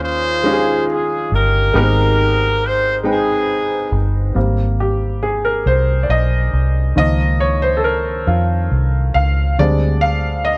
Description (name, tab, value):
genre	gospel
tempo	46 BPM (dotted quarters)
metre	6/8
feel	straight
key	Ab major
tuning	A4 = 439 Hz
part	warm horn section	melody	0.0-4.3 s	C4 to C5	-20 LUFS	equal	plate reverb
part	clear baby grand piano	accompaniment	0.0-10.6 s	Ab2 to G5	-21 LUFS	equal	none
part	vintage muted fingered electric bass	bass	0.0-10.6 s	G1 to F2	-20 LUFS	equal	none
room	light reverb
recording	none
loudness	-17 LUFS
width	mono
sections	0.0-4.4 A section; 4.4-10.6 B section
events	grand piano solo 4.4-10.6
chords	0.0 Eb9sus4; 1.8 Abmaj9; 7.0 Db69; 9.6 Fm13